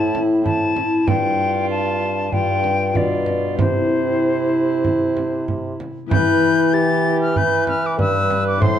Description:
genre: classical, renaissance-style consort dance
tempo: 96 BPM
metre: 4/4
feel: straight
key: unclear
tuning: A4 = 437 Hz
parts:
  - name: silver concert flute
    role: melody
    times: 0.0-8.8 s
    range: C5 to A6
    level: -22 LUFS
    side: left 3 dB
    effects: none
  - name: warm viola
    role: second line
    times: 0.0-8.8 s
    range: E4 to C5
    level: -23 LUFS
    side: right 4 dB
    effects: none
  - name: concert harp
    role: accompaniment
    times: 0.0-8.8 s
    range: G2 to C5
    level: -23 LUFS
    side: left 6 dB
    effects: none
  - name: mellow bassoon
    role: bass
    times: 0.0-8.8 s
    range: G2 to E3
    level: -23 LUFS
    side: right 2 dB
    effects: none
  - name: frame drum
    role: percussion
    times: 0.1-8.8 s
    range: none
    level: -23 LUFS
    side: right 3 dB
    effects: none
room: wet large studio reverb, RT60 1.3 s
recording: dark, warm production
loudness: -16 LUFS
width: side -10 dB against mid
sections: 0.0-6.1 A section; 6.1-8.8 A section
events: none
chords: 0.0 Am; 1.1 G7sus4; 2.3 G7; 3.6 C; 6.1 Em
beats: 0.45 | 1.07 1.70 2.32 2.95 | 3.58 4.21 4.84 5.47 | 6.11 6.73 7.36 7.98 | 8.60

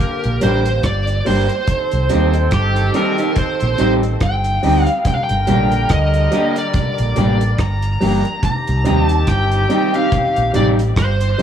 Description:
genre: roots reggae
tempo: 71 BPM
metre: 4/4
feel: swing 58% on 16ths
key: unclear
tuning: A4 = 438 Hz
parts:
  - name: smooth overdriven lead guitar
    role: melody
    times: 0.0-11.4 s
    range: G4 to Bb5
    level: -20 LUFS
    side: right 1 dB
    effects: tape echo
  - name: warm horn section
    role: second line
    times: 0.0-11.3 s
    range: D3 to Bb4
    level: -24 LUFS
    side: left 3 dB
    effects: tape echo
  - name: deep dub fingered electric bass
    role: bass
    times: 0.2-11.3 s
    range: G1 to Eb2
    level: -17 LUFS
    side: equal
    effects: none
  - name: deep reggae drum kit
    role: drums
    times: 0.2-11.4 s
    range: hi-hat, kick drum, rim click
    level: -21 LUFS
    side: equal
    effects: none
  - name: electric guitar at the edge of break-up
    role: accompaniment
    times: 0.4-11.4 s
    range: Bb3 to G4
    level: -23 LUFS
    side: right 2 dB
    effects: tape echo
  - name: dark upright piano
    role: stabs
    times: 0.4-11.4 s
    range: G3 to G4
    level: -23 LUFS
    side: equal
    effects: none
  - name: congas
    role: percussion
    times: 5.1-11.4 s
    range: none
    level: -23 LUFS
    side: right 4 dB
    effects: none
room: light reverb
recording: none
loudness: -14 LUFS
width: side -9 dB against mid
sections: 0.0-11.4 A section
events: none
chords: 0.0 Gm; 1.7 Cm; 5.1 Gm; 8.4 Cm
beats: 0.83 | 1.68 2.52 3.37 4.21 | 5.05 5.90 6.74 7.59 | 8.43 9.28 10.12 10.96

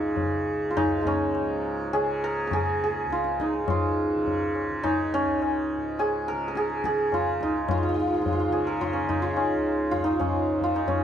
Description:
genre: indian classical, Hindustani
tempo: 105 BPM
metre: 7/4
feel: straight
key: Db raga bhupali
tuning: A4 = 440 Hz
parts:
  - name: santur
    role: melody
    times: 0.0-11.0 s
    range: F3 to Bb4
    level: -24 LUFS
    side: right 1 dB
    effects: none
  - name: tanpura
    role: drone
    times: 0.0-11.0 s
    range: Db2 to Db3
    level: -34 LUFS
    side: right 1 dB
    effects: none
  - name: tabla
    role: percussion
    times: 0.2-11.0 s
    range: none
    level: -31 LUFS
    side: left 5 dB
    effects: none
room: little or no reverb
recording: dry, close 1970s-style studio recording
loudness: -23 LUFS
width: side -9 dB against mid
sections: 0.0-11.0 A section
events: speeding up 0.0-11.0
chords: none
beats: 0.17 0.76 1.35 1.94 2.52 3.11 | 3.69 4.27 4.84 5.42 5.99 6.56 7.13 | 7.69 8.26 8.82 9.38 9.93 10.48 11.04

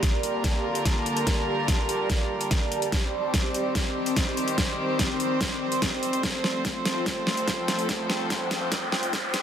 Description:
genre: heavy wobble dubstep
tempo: 145 BPM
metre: 4/4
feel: half-time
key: G minor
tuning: A4 = 440 Hz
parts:
  - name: rich chamber string section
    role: sustained chords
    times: 0.0-9.4 s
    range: D3 to C5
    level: -29 LUFS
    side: right 1 dB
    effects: sidechain pumping
  - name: dubstep drum kit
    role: drums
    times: 0.0-9.4 s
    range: hi-hat, snare drum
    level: -28 LUFS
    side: equal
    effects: overdrive, studio reverb
  - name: electronic kick drum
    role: drums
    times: 0.0-9.2 s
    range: none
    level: -28 LUFS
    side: equal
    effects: overdrive, studio reverb
  - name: airy breathy pad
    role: texture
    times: 0.0-9.4 s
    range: C4 to A5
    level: -30 LUFS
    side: equal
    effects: chorus, phaser, sidechain pumping
  - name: riser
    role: sound effects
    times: 7.5-9.4 s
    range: none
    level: -35 LUFS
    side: equal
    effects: none
room: moderate lush hall reverb, RT60 2.0 s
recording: dense, heavily limited modern master, high-pass filter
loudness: -23 LUFS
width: side -9 dB against mid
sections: 0.0-9.4 A section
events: build-up 0.0-9.4; drum fill 0.0-9.4; filter sweep 0.0-9.4; riser 7.5-9.4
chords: 0.0 Gm7; 2.9 Cm; 6.2 F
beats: 0.03 0.44 0.85 | 1.27 1.68 2.10 2.51 | 2.92 3.34 3.75 4.17 | 4.58 4.99 5.41 5.82 | 6.24 6.65 7.06 7.48 | 7.89 8.30 8.72 9.13

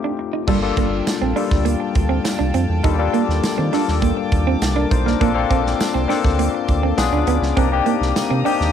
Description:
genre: polished 1980s jazz-funk pop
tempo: 102 BPM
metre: 4/4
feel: straight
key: unclear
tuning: A4 = 440 Hz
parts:
  - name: barky tine electric piano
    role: accompaniment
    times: 0.0-8.7 s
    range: G3 to C5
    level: -20 LUFS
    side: left 9 dB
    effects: overdrive, analog chorus, cassette tape
  - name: clean electric guitar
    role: riff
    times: 0.0-8.5 s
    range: G3 to Eb4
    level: -23 LUFS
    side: right 11 dB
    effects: lush chorus, cassette tape
  - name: rich studio string section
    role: sustained chords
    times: 0.5-8.7 s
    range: Bb3 to Eb6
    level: -30 LUFS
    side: equal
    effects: cassette tape
  - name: round analog bass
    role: bass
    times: 0.5-8.7 s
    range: G1 to Eb3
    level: -21 LUFS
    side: right 1 dB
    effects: none
  - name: modern studio drum kit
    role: drums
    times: 0.5-8.7 s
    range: crash cymbal, hi-hat, kick drum, snare drum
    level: -23 LUFS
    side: right 2 dB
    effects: cassette tape
  - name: tambourine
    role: percussion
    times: 1.1-8.3 s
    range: none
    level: -36 LUFS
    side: left 10 dB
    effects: none
room: light reverb, small room ambience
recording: home recording on cassette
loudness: -16 LUFS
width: side -8 dB against mid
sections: 0.5-8.7 A section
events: break 0.0-0.5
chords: 0.5 Gm9; 2.8 Ebmaj9#11; 5.2 Bbmaj9; 7.0 Bdim7; 7.6 Cm7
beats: | 0.48 1.07 1.66 2.25 | 2.85 3.44 4.03 4.62 | 5.21 5.80 6.39 6.98 | 7.58 8.17

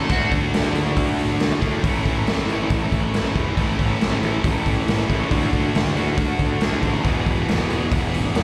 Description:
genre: classic rock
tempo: 138 BPM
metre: 4/4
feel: straight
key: A major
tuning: A4 = 440 Hz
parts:
  - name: sludgy distorted guitar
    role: riff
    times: 0.0-8.4 s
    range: E2 to D4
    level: -28 LUFS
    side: equal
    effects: overdrive, slapback echo
  - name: tight distorted guitar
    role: riff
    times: 0.0-8.4 s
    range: E2 to G#4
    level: -29 LUFS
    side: equal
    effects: distortion, slapback echo
  - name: fuzz picked electric bass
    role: bass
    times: 0.0-8.4 s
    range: E1 to D2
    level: -27 LUFS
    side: equal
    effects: overdrive
  - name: raw garage drum kit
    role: drums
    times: 0.1-8.4 s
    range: hi-hat, kick drum, snare drum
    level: -25 LUFS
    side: equal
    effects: none
room: little or no reverb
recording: live gig heard through the venue's PA, recital hall reverb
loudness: -21 LUFS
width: mono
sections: 0.0-8.4 A section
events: none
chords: 0.0 D; 1.8 A; 5.3 D; 7.0 E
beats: | 0.10 0.53 0.97 1.40 | 1.84 2.27 2.71 3.14 | 3.58 4.01 4.45 4.88 | 5.31 5.75 6.18 6.61 | 7.05 7.48 7.91 8.35

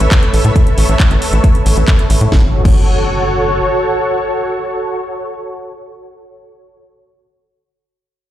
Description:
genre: uplifting trance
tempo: 136 BPM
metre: 4/4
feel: straight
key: F# minor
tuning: A4 = 440 Hz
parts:
  - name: analog string pad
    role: sustained chords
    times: 0.0-6.6 s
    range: A3 to E5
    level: -17 LUFS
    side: equal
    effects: ensemble chorus, sidechain pumping
  - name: tight sequencer bass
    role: bass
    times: 0.0-3.6 s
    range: F#1 to A2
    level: -13 LUFS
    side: equal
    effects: sidechain pumping
  - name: house drum kit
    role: drums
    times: 0.0-2.8 s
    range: crash cymbal, handclaps, hi-hat, snare drum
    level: -21 LUFS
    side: equal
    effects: sidechain pumping on hats, sidechain pumping on cymbals
  - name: electronic kick drum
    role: drums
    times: 0.1-2.8 s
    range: none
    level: -11 LUFS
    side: equal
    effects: none
  - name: impact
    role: sound effects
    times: 2.3-7.2 s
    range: none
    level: -18 LUFS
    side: equal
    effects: none
room: light reverb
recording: played on a big sound system in a bare room, large studio reverb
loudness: -11 LUFS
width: side -12 dB against mid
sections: 0.0-2.3 A section; 2.3-5.8 B section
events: none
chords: 0.0 Aadd9; 2.3 F#m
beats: 0.11 | 0.56 1.00 1.44 1.88 | 2.32 2.76 3.20 3.64 | 4.08 4.53 4.97 5.41

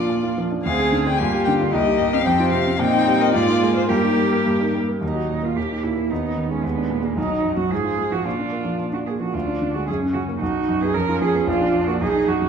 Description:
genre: quick classical-period movement for piano quintet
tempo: 111 BPM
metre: 2/4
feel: straight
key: Eb major, Eb minor from 5.0 s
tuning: A4 = 440 Hz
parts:
  - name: rich violin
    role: melody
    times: 0.0-4.7 s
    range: Bb4 to Ab5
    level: -23 LUFS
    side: left 9 dB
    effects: none
  - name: rich cello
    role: second line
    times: 0.0-12.5 s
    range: Bb3 to Bb4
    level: -24 LUFS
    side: right 3 dB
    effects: none
  - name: rich violin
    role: second line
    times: 0.0-4.8 s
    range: Eb4 to Ab4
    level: -28 LUFS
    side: left 4 dB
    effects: none
  - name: clear baby grand piano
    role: accompaniment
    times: 0.0-12.5 s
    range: Bb1 to Ab4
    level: -22 LUFS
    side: right 1 dB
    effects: none
  - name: rich viola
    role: accompaniment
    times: 0.0-12.5 s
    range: F3 to D#4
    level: -26 LUFS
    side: right 3 dB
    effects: none
room: wet recital hall reverb, RT60 1.5 s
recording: dark, warm production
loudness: -18 LUFS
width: side -7 dB against mid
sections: 0.0-5.0 A section; 5.0-12.5 A section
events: none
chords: 0.0 Bb; 0.6 Dm7b5; 1.2 Gm; 1.7 Cm7; 2.3 F5; 2.8 Eb/Bb; 3.3 Bb7/Ab; 3.9 Eb/G; 5.0 Ebm; 5.6 Eb; 6.1 Abm/Eb; 6.6 Bb7/Eb; 7.2 B; 7.7 Fm/Ab; 8.3 Bb; 9.3 Ddim; 9.9 Gb; 10.4 B; 10.9 Fdim; 11.5 Bb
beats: 0.09 | 0.65 1.19 | 1.72 2.26 | 2.79 3.34 | 3.89 4.46 | 5.02 5.57 | 6.11 6.64 | 7.17 7.71 | 8.25 8.80 | 9.34 9.88 | 10.41 10.94 | 11.47 12.01

